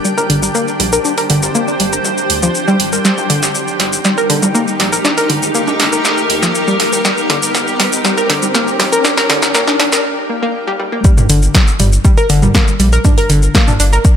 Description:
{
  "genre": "melodic techno",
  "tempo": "120 BPM",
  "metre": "4/4",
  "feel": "straight",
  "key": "G minor",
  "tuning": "A4 = 440 Hz",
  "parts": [
    { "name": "analog pluck", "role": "arpeggios", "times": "0.0-14.0 s", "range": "D3 to Bb4", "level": "-16 LUFS", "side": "equal", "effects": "chorus, sidechain pumping, dub echo" },
    { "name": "techno drum kit", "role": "drums", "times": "0.0-14.2 s", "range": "hi-hat, shaker, snare drum, toms", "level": "-16 LUFS", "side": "equal", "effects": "high-pass filter on perc, high-pass filter on toms, high-pass filter on hats, high-pass filter on snare, high-pass filter on room" },
    { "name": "riser", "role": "sound effects", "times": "0.0-10.0 s", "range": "none", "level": "-24 LUFS", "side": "equal", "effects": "none" },
    { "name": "granular cloud pad", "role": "texture", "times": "0.0-10.0 s", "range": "D4 to G5", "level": "-18 LUFS", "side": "equal", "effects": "built-in reverb, sidechain pumping" },
    { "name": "round analog bass", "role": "bass", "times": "0.3-14.0 s", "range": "G1 to D2", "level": "-18 LUFS", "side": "equal", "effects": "sidechain pumping" },
    { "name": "electronic kick drum", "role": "drums", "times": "11.0-14.2 s", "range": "none", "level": "-9 LUFS", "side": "equal", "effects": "overdrive" }
  ],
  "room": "moderate concert hall reverb, RT60 2.2 s",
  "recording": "high-pass filter",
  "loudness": "-10 LUFS",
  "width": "side -8 dB against mid",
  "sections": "0.0-11.0 A section; 11.0-14.2 B section",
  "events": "build-up 0.0-11.0; riser 0.0-10.0; filter sweep on synth pluck 0.0-11.0; drum fill 3.0-10.0, 10.7-11.0; break 10.0-11.0; drop 11.0-14.2",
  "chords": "0.0 Gm; 3.0 Eb/G; 11.0 Gm"
}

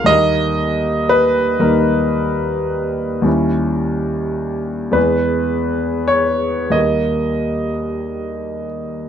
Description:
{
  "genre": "classical, romantic nocturne for solo piano",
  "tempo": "30-39 BPM (dotted quarters)",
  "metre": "6/8",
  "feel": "rubato",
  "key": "unclear",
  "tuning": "A4 = 441 Hz",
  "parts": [
    { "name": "warm grand piano", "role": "solo", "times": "0.0-9.1 s", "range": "D2 to E#5", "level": "-15 LUFS", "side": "equal", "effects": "none" }
  ],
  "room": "light reverb",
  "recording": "dark, warm production",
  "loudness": "-15 LUFS",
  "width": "side -8 dB against mid",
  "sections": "0.0-9.1 A section",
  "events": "none",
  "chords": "0.1 D#; 3.3 D#7b9; 5.0 E; 6.7 D#"
}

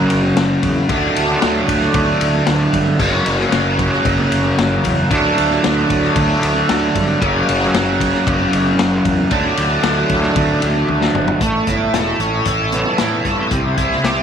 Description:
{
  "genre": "psychedelic rock",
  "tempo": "114 BPM",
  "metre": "4/4",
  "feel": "straight",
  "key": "unclear",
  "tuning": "A4 = 443 Hz",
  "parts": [
    { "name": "hand-pumped harmonium", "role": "sustained chords", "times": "0.0-14.2 s", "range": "C#4 to C6", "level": "-24 LUFS", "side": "right 11 dB", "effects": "none" },
    { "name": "cranked stack guitar", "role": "riff", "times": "0.0-14.2 s", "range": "F#2 to C#5", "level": "-16 LUFS", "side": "equal", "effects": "overdrive, rotary speaker" },
    { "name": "fuzz fingered electric bass", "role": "bass", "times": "0.0-14.2 s", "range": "E1 to A2", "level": "-23 LUFS", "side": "equal", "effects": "overdrive" },
    { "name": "vintage drum kit", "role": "drums", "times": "0.1-14.2 s", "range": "crash cymbal, hi-hat, kick drum, ride cymbal, snare drum, toms", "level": "-21 LUFS", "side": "left 4 dB", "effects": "none" },
    { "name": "congas", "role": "percussion", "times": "0.2-13.5 s", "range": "none", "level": "-33 LUFS", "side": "right 12 dB", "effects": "none" }
  ],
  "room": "light reverb",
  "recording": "1960s-style stereo",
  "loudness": "-14 LUFS",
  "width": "side -8 dB against mid",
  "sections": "0.0-11.4 A section; 11.4-14.2 B section",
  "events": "drum fill 10.9-11.4",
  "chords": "0.0 F#; 0.9 D; 3.0 F#; 5.1 D; 7.2 F#; 9.3 D; 11.4 Aadd9; 13.5 C"
}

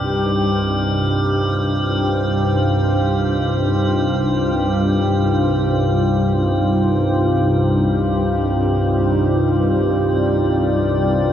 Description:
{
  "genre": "dark ambient drone",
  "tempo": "free time",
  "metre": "none",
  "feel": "none",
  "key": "C minor",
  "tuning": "A4 = 440 Hz",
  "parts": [
    { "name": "deep dark ambient pad", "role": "sustained chords", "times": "0.0-11.3 s", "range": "Eb4 to D5", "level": "-21 LUFS", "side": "equal", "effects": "chorus, built-in reverb" },
    { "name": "organ-like drone", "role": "drone", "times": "0.0-11.3 s", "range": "C2 to G2", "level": "-18 LUFS", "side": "equal", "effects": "ensemble chorus, built-in reverb" },
    { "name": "metallic inharmonic drone", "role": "texture", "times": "0.0-11.3 s", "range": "G4", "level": "-23 LUFS", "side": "right 1 dB", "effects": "chorus, built-in reverb" }
  ],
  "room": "wet cathedral reverb, RT60 5.8 s",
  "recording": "none",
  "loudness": "-15 LUFS",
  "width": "side -10 dB against mid",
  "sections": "0.0-11.3 A section",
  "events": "fade-in on ambient pad 0.0-11.3",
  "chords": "0.0 Cmadd9"
}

